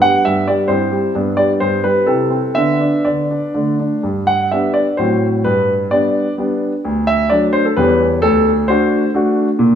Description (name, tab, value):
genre	classical-period piano sonatina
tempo	129 BPM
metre	3/4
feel	rubato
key	G major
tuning	A4 = 440 Hz
part	warm grand piano	solo	0.0-9.8 s	D2 to F#5	-13 LUFS	equal	none
room	wet recital hall reverb, RT60 1.5 s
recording	small room ambience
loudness	-13 LUFS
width	side -8 dB against mid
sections	0.0-4.0 A section; 4.0-9.8 B section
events	none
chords	0.0 G; 0.7 C/G; 1.1 G; 2.1 Am/C; 2.6 Bmadd11/D; 3.5 D5; 4.0 G; 5.0 F#dim/A; 5.4 G; 6.8 D; 7.8 C#dim/E; 8.2 D